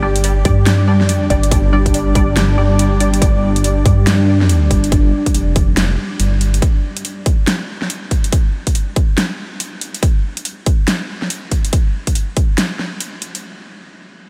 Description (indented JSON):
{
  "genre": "deep dubstep",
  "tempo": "141 BPM",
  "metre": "4/4",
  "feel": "swing 62% on 16ths, half-time",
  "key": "unclear",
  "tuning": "A4 = 440 Hz",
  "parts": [
    { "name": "granular cloud pad", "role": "sustained chords", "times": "0.0-6.6 s", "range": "G3 to D5", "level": "-23 LUFS", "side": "equal", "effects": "built-in reverb, vintage 12-bit sampler grit" },
    { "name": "filtered dub chord stab", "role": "stabs", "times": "0.0-3.1 s", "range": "G3 to D5", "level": "-26 LUFS", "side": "equal", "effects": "phaser, dub echo" },
    { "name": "dark detuned saw bass", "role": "bass", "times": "0.0-6.6 s", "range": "F1 to G2", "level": "-17 LUFS", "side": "equal", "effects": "none" },
    { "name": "dubstep drum kit", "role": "drums", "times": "0.2-13.4 s", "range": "hi-hat, snare drum", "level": "-24 LUFS", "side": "equal", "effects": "none" },
    { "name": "electronic kick drum", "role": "drums", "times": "0.5-12.5 s", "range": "none", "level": "-17 LUFS", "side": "equal", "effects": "none" }
  ],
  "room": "moderate huge ambient reverb, RT60 7.8 s",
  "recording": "dreamy mix soaked in reverb",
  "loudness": "-15 LUFS",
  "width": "mono",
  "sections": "0.0-13.4 A section",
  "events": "filter sweep on ambient pad 0.0-6.6",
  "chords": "0.0 G5",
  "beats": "0.24 0.66 1.09 | 1.51 1.94 2.37 2.79 | 3.22 3.64 4.07 4.49 | 4.92 5.34 5.77 6.20 | 6.62 7.05 7.47 7.90 | 8.32 8.75 9.17 9.60 | 10.03 10.45 10.88 11.30 | 11.73 12.15 12.58 13.00"
}